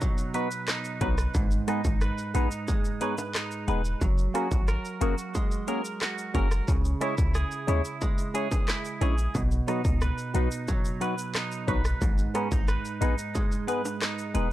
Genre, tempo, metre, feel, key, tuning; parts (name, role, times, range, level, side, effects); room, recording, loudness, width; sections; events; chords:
dancehall; 90 BPM; 4/4; straight; G# minor; A4 = 439 Hz
clean electric guitar; arpeggios; 0.0-14.5 s; G#2 to B4; -32 LUFS; right 3 dB; analog chorus
industrial drum kit; drums; 0.0-14.5 s; handclaps, hi-hat, kick drum, rim click, shaker; -29 LUFS; equal; distortion
maracas and timbales; percussion; 0.0-14.3 s; -42 LUFS; equal
percussive organ stab; accompaniment; 0.3-14.5 s; F#3 to C#5; -31 LUFS; left 1 dB; chorus
hard-hitting 808-style bass; bass; 1.0-14.5 s; E1 to D#2; -26 LUFS; equal
digital ambience; dry, gritty hardware recording, transformer saturation; -25 LUFS; side -14 dB against mid
0.0-14.5 A section
0.0 B; 1.3 G#m; 4.0 F#add9; 6.7 C#m; 9.3 B; 12.0 G#m